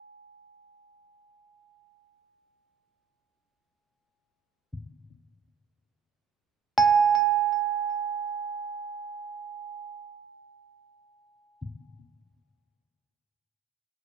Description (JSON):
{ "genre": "world meditative, free-time meditation music", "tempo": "free time", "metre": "none", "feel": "none", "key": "unclear", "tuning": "A4 = 440 Hz", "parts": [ { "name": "bell-like tine electric piano", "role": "solo", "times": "0.0-11.6 s", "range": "G#5", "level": "-24 LUFS", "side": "right 7 dB", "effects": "phaser, ping-pong delay" } ], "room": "wet recital hall reverb, RT60 1.7 s", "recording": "dark, warm production", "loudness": "-23 LUFS", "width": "side -5 dB against mid", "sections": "0.0-6.8 A section; 6.8-10.7 B section", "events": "none", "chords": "none", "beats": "free time" }